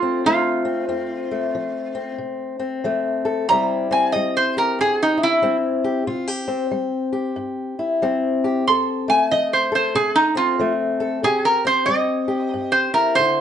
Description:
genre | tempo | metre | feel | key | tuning
acoustic country blues, solo or duo | 93 BPM | 4/4 | swing 62% on 8ths | F major | A4 = 440 Hz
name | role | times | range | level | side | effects
metal-body resonator slide guitar | melody | 0.0-13.4 s | Eb4 to C6 | -18 LUFS | right 2 dB | none
fingerpicked old ladder-braced acoustic guitar | accompaniment | 0.0-13.4 s | F2 to A4 | -22 LUFS | left 3 dB | none
room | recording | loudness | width
moderate studio reverb, RT60 0.7 s | nothing above 10.4 kHz | -18 LUFS | side -9 dB against mid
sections
0.0-13.4 A section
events
resonator guitar played with a steel bar solo 0.0-13.4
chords
0.0 F; 3.5 C; 8.7 F; 11.2 C

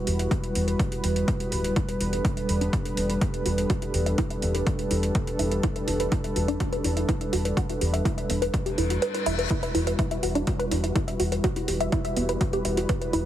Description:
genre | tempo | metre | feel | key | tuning
melodic techno | 124 BPM | 4/4 | straight | unclear | A4 = 441 Hz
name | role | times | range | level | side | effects
dark analog pad | sustained chords | 0.0-13.3 s | G3 to B4 | -29 LUFS | right 1 dB | chorus, vintage 12-bit sampler grit, sidechain pumping
tight sequenced synth | arpeggios | 0.1-13.2 s | B3 to G5 | -30 LUFS | equal | chorus, sidechain pumping, ping-pong delay
round analog bass | bass | 0.1-13.3 s | D1 to E1 | -28 LUFS | equal | sidechain pumping
electronic hi-hat | drums | 0.1-13.2 s | none | -35 LUFS | right 1 dB | overdrive
electronic kick drum | drums | 0.3-13.0 s | none | -27 LUFS | equal | none
reverse cymbal | sound effects | 8.7-9.5 s | none | -35 LUFS | left 6 dB | none
room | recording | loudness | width
light reverb | heavily compressed radio sound, multiband compression | -23 LUFS | side -12 dB against mid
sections
0.0-13.3 A section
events
filter sweep on synth arpeggio sound 0.0-13.3; reverse cymbal 8.7-9.5; kick drops out 9.0-9.5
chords
0.0 Emadd9; 1.8 Gadd9/E; 9.5 Emadd9

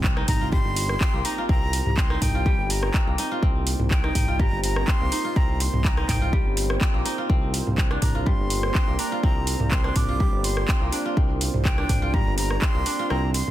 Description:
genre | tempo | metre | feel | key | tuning
afro house | 124 BPM | 4/4 | swing 53% on 16ths | C minor | A4 = 440 Hz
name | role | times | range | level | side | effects
warm analog pad | sustained chords | 0.0-13.5 s | Bb3 to C5 | -35 LUFS | right 4 dB | chorus, sidechain pumping
kora | arpeggios | 0.0-13.5 s | G3 to F4 | -30 LUFS | left 1 dB | sidechain pumping, digital delay
smooth synth bass | bass | 0.0-13.5 s | G1 to C2 | -26 LUFS | equal | sidechain pumping
afro-pop drum kit | drums | 0.0-13.5 s | handclaps, hi-hat, rim click, toms | -28 LUFS | right 1 dB | none
electronic kick drum | drums | 0.0-12.7 s | none | -22 LUFS | equal | none
impact | sound effects | 0.0-1.5 s | none | -38 LUFS | equal | none
breathy bright jazz flute | melody | 0.3-13.5 s | G5 to D6 | -31 LUFS | right 1 dB | digital delay
room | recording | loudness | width
digital ambience | dense, heavily limited modern master | -20 LUFS | side -13 dB against mid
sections
0.0-13.5 A section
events
impact 0.0-1.5; kick drops out 13.1-13.5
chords
0.0 Cm7; 7.3 Bbadd9

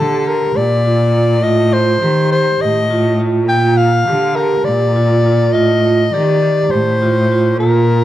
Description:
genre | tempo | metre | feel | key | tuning
contemporary instrumental, chamber music in an uneven meter | 204 BPM (eighths) | 7/8 | straight | unclear | A4 = 442 Hz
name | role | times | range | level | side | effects
breathy soprano saxophone | melody | 0.0-8.0 s | A4 to G5 | -16 LUFS | left 3 dB | none
vibraphone with medium hard mallets | arpeggios | 0.0-8.0 s | F4 to G4 | -17 LUFS | right 5 dB | none
rich cello | bass | 0.0-8.0 s | A2 to Eb3 | -15 LUFS | left 1 dB | none
room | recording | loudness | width
moderate recital hall reverb, RT60 1.4 s | dark, warm production | -11 LUFS | side -13 dB against mid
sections
0.0-8.0 A section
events
none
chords
0.0 Gmadd9; 1.4 Adim; 3.5 Gm/Bb; 5.5 Adim

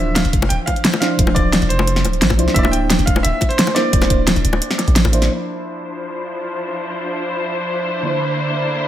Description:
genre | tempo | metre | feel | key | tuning
liquid drum and bass | 175 BPM | 4/4 | straight | D minor | A4 = 443 Hz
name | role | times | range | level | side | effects
bright baby grand piano | melody | 0.0-4.9 s | C5 to G5 | -24 LUFS | right 1 dB | analog delay
mellow FM electric piano | accompaniment | 0.0-8.9 s | D3 to C5 | -22 LUFS | right 1 dB | chorus, phaser, analog delay
long sustained 808-style bass | bass | 0.0-5.3 s | D1 to C2 | -18 LUFS | equal | none
pop drum kit | drums | 0.2-5.3 s | hi-hat, snare drum | -18 LUFS | equal | overdrive
bongos | percussion | 0.2-5.1 s | none | -25 LUFS | left 4 dB | none
electronic kick drum | drums | 0.3-5.1 s | none | -18 LUFS | equal | overdrive
rich symphonic string section | sustained chords | 5.3-8.9 s | D3 to C5 | -21 LUFS | left 1 dB | sidechain pumping, low-pass filter
room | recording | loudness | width
moderate plate reverb, RT60 1.2 s | dreamy mix soaked in reverb | -15 LUFS | side -12 dB against mid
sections
0.0-5.3 A section; 5.3-8.9 B section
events
drop 0.0-5.3; filter sweep on string section 5.3-8.9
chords
0.0 Dm9; 2.6 C9/D; 5.3 Dm9; 8.0 C9/D

